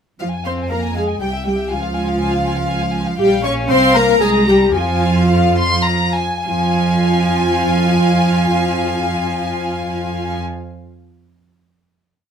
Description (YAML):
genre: quick classical-period movement for string orchestra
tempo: 102-122 BPM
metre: 3/4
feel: straight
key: F minor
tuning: A4 = 440 Hz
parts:
  - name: dark chamber violin section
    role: melody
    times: 0.2-10.4 s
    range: E5 to C6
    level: -21 LUFS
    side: left 3 dB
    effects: none
  - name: warm symphonic violin section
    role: second line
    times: 0.2-10.4 s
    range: F5 to Db6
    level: -24 LUFS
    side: left 1 dB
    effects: none
  - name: dark symphonic viola section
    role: accompaniment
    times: 0.2-10.4 s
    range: F4 to Db5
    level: -20 LUFS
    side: left 1 dB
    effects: none
  - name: dark symphonic double bass section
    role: bass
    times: 0.2-10.4 s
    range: Bb1 to F2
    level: -21 LUFS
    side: right 2 dB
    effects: none
  - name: warm symphonic cello section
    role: bass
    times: 0.2-10.4 s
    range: F3 to Db4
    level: -20 LUFS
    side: right 2 dB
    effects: none
room: light reverb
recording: none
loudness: -14 LUFS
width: side -7 dB against mid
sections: 0.2-6.5 A section; 6.5-9.9 final chord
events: slowing down 2.5-6.5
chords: 0.2 Fm; 1.2 C; 1.7 Db; 3.2 Gm7b5/Bb; 3.7 F5/C; 4.2 C5; 4.8 Fm